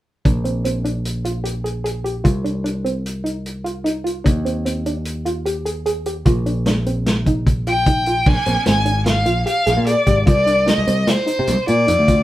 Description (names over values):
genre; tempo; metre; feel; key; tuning
progressive instrumental, band music in an uneven meter; 150 BPM; 5/4; straight; unclear; A4 = 442 Hz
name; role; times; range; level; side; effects
soft round pluck; arpeggios; 0.3-12.2 s; C4 to Ab4; -24 LUFS; right 1 dB; chorus
picked electric bass; bass; 0.3-12.2 s; Ab1 to C3; -21 LUFS; equal; none
warm soul drum kit; drums; 0.3-12.2 s; crash cymbal, hi-hat, kick drum, snare drum; -19 LUFS; equal; none
warm violin; melody; 7.7-12.2 s; C5 to Ab5; -18 LUFS; left 1 dB; none
room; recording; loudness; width
moderate studio ambience, RT60 0.5 s; band playing live in one room; -16 LUFS; side -14 dB against mid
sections
0.3-8.3 A section; 8.3-12.2 B section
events
none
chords
0.3 Bb9; 2.3 Cmadd9; 4.3 Ebmaj7; 6.3 Bbadd9; 8.3 Bb9; 10.3 Cmadd9